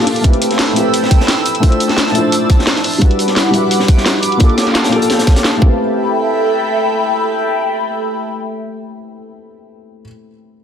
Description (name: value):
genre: liquid drum and bass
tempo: 173 BPM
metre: 4/4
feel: straight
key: A minor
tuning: A4 = 440 Hz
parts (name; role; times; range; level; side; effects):
- felt-muted upright piano; accompaniment; 0.0-10.6 s; G3 to C5; -17 LUFS; left 1 dB; low-pass filter, digital delay
- airy breathy pad; sustained chords; 0.0-9.3 s; D4 to E6; -18 LUFS; equal; chorus, phaser
- crunchy breakbeat drum kit; drums; 0.1-5.5 s; hi-hat, snare drum; -20 LUFS; equal; high-pass filter on hats, high-pass filter on snare, high-pass filter on room
- drum and bass drum kit; drums; 0.1-5.5 s; hi-hat, snare drum; -18 LUFS; equal; low-pass filter on hats, low-pass filter on snare, low-pass filter on room
- electronic kick drum; drums; 0.2-5.7 s; none; -10 LUFS; equal; none
room: light reverb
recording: dense, heavily limited modern master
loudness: -11 LUFS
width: side -8 dB against mid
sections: 0.0-5.8 A section; 5.8-8.6 B section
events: none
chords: 0.2 Am9; 1.6 Dm9; 3.0 Em9; 4.4 Gm9; 5.6 Am9